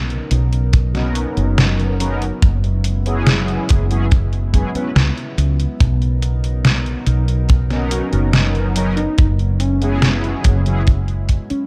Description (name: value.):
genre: vaporwave.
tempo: 71 BPM.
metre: 4/4.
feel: straight.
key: B major.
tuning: A4 = 439 Hz.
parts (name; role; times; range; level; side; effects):
warbly tape-like pad; sustained chords; 0.0-11.7 s; C#3 to A#4; -32 LUFS; equal; chorus, built-in reverb, vintage 12-bit sampler grit.
woody fretless electric bass; bass; 0.0-11.5 s; F#1 to C#2; -20 LUFS; equal; ensemble chorus.
detuned 8-bit digital drum machine; drums; 0.1-11.7 s; hi-hat, snare drum; -21 LUFS; equal; small room ambience, gated reverb.
kick drum; drums; 0.7-11.5 s; none; -17 LUFS; equal; small room ambience.
mellow synth brass; accompaniment; 0.9-10.8 s; F#3 to B4; -25 LUFS; equal; analog chorus, analog delay.
warm velvety synth lead; melody; 7.9-11.6 s; C#4 to F#4; -28 LUFS; equal; chorus, tape echo.
room: digital ambience.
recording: none.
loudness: -17 LUFS.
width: mono.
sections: 0.0-11.7 A section.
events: fade-out 10.3-11.7.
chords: 0.0 Bmaj9; 2.4 F#9sus4; 5.8 Bmaj9; 9.2 F#9sus4.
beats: 0.73 1.58 | 2.42 3.27 4.11 4.96 | 5.80 6.65 7.49 8.34 | 9.18 10.03 10.87.